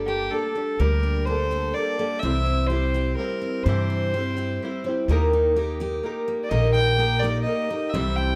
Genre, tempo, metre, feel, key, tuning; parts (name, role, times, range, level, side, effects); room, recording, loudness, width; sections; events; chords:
acoustic folk duo or small band; 126 BPM; 3/4; straight; A4 = 438 Hz
fingerpicked twelve-string acoustic guitar; accompaniment; 0.0-8.4 s; C3 to C5; -29 LUFS; equal
picked steel-string acoustic guitar; arpeggios; 0.0-8.4 s; G3 to A4; -35 LUFS; equal
upright bass; bass; 0.0-8.4 s; G1 to G2; -26 LUFS; equal
warm fiddle; second line; 0.1-8.4 s; G4 to G5; -29 LUFS; equal
light reverb; close, detailed microphones; -24 LUFS; mono
0.0-8.4 A section
fiddle solo 0.0-8.4
0.0 Gmadd9; 2.2 C; 5.1 Eb